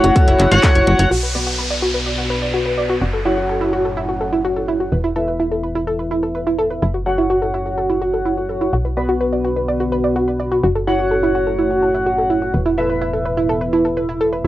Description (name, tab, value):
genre	melodic techno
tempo	126 BPM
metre	4/4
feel	straight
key	F# minor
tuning	A4 = 443 Hz
part	dark analog pad	sustained chords	0.0-14.5 s	A3 to D5	-27 LUFS	equal	chorus, phaser, sidechain pumping
part	analog pluck	arpeggios	0.0-14.5 s	E4 to D5	-20 LUFS	right 1 dB	chorus, sidechain pumping, analog delay
part	sync-sweep polysynth	stabs	0.0-14.4 s	B3 to F#5	-20 LUFS	left 1 dB	lush chorus, cassette tape, sidechain pumping, analog delay
part	tight sequencer bass	bass	0.0-14.5 s	E1 to B1	-23 LUFS	equal	sidechain pumping
part	house drum kit	drums	0.0-1.1 s	handclaps, hi-hat	-24 LUFS	equal	overdrive, sidechain pumping on hats, cassette tape
part	electronic kick drum	drums	0.2-0.7 s	none	-13 LUFS	equal	overdrive, cassette tape
part	downlifter	sound effects	1.1-4.9 s	none	-25 LUFS	equal	none
room	moderate booth ambience, RT60 0.2 s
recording	home recording on cassette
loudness	-15 LUFS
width	side -14 dB against mid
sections	0.0-1.1 A section; 1.1-14.5 B section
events	filter sweep on analog polysynth 0.0-1.1; filter sweep on analog synth pad 1.1-14.5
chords	0.0 F#m7; 1.1 Bm; 3.0 F#m7; 4.9 Esus4; 6.8 F#m7; 8.7 Bm; 10.6 F#m7; 12.5 Esus4